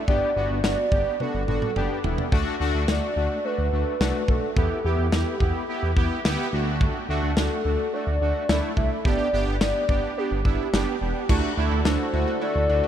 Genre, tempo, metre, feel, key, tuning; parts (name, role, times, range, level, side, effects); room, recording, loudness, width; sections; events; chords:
synth-pop; 107 BPM; 4/4; straight; D major; A4 = 439 Hz
hollow clarinet-like synth lead; melody; 0.0-12.9 s; G4 to E5; -28 LUFS; equal; chorus, diffuse ambient delay
analog synth brass; accompaniment; 0.0-12.9 s; A3 to G4; -27 LUFS; equal; chorus
smooth gliding synth bass; bass; 0.1-12.8 s; E1 to E2; -26 LUFS; equal
modern studio drum kit; drums; 0.1-12.0 s; crash cymbal, kick drum, snare drum, toms; -26 LUFS; equal
warm brass ensemble; sustained chords; 11.3-12.9 s; D3 to A4; -32 LUFS; equal
analog pluck; arpeggios; 11.3-12.9 s; D4 to F#4; -32 LUFS; right 4 dB; chorus, diffuse ambient delay
moderate huge ambient reverb, RT60 4.8 s; dreamy mix soaked in reverb; -21 LUFS; side -10 dB against mid
0.0-11.3 A section; 11.3-12.9 B section
drum fill 1.2-2.3
0.1 Gadd9; 2.3 D; 4.6 Em; 6.5 Dadd9; 9.1 G; 11.3 Dadd9